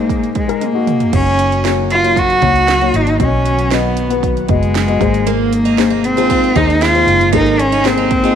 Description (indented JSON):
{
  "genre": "piano-driven pop",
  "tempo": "116 BPM",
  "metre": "4/4",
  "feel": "straight",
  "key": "unclear",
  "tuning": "A4 = 438 Hz",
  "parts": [
    { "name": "warm cello", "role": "melody", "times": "0.0-8.4 s", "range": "Ab3 to Gb4", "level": "-14 LUFS", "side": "right 1 dB", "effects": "none" },
    { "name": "dark upright piano", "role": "accompaniment", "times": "0.0-8.4 s", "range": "Ab1 to Eb5", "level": "-19 LUFS", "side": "left 12 dB", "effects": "none" },
    { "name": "airy breathy pad", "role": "sustained chords", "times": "0.0-8.4 s", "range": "Bb2 to Ab4", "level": "-25 LUFS", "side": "right 1 dB", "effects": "chorus" },
    { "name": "house drum kit", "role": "drums", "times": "0.1-8.4 s", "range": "crash cymbal, hi-hat, kick drum, snare drum, toms", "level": "-21 LUFS", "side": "right 5 dB", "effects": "overdrive" },
    { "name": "vintage muted fingered electric bass", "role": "bass", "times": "1.1-8.4 s", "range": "Gb1 to Eb2", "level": "-18 LUFS", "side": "right 1 dB", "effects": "none" },
    { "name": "picked steel-string acoustic guitar", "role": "riff", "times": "5.3-8.4 s", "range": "Bb3 to F4", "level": "-21 LUFS", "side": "right 14 dB", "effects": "none" }
  ],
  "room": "light reverb, digital ambience",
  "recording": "1960s-style stereo with parts hard left and right",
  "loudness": "-11 LUFS",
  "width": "side -8 dB against mid",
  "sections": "0.0-1.1 A section; 1.1-8.4 B section",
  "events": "drum fill 0.6-1.1",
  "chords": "0.0 Absus2; 1.1 Gb; 3.2 Cb; 5.0 Abadd9"
}